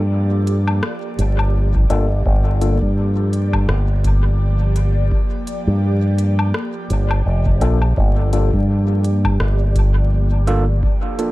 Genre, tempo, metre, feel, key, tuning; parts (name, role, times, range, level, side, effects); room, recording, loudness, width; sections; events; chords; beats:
ambient dub; 84 BPM; 4/4; swing 57% on 16ths; G minor; A4 = 444 Hz
airy breathy pad; sustained chords; 0.0-11.3 s; F3 to D5; -28 LUFS; equal; chorus, phaser
fingered electric bass with an envelope filter; bass; 0.0-10.8 s; F1 to G2; -16 LUFS; equal
organic electronic drum kit; drums; 0.5-11.3 s; hi-hat, rim click, woodblock; -29 LUFS; left 2 dB; overdrive, studio reverb, dub echo
electronic kick drum; drums; 1.7-11.0 s; -21 LUFS; equal; studio reverb
overdriven tine electric piano; stabs; 1.9-2.8, 7.6-11.3 s; Bb3 to A4; -26 LUFS; moving between left 7 dB and right 3 dB; auto-pan, dub echo
digital ambience; dark, warm production, vinyl crackle; -15 LUFS; side -18 dB against mid
0.0-11.3 A section
0.0 Gm7
0.12 0.83 1.54 | 2.26 2.97 3.69 4.40 | 5.12 5.83 6.54 7.26 | 7.97 8.69 9.40 10.12 | 10.83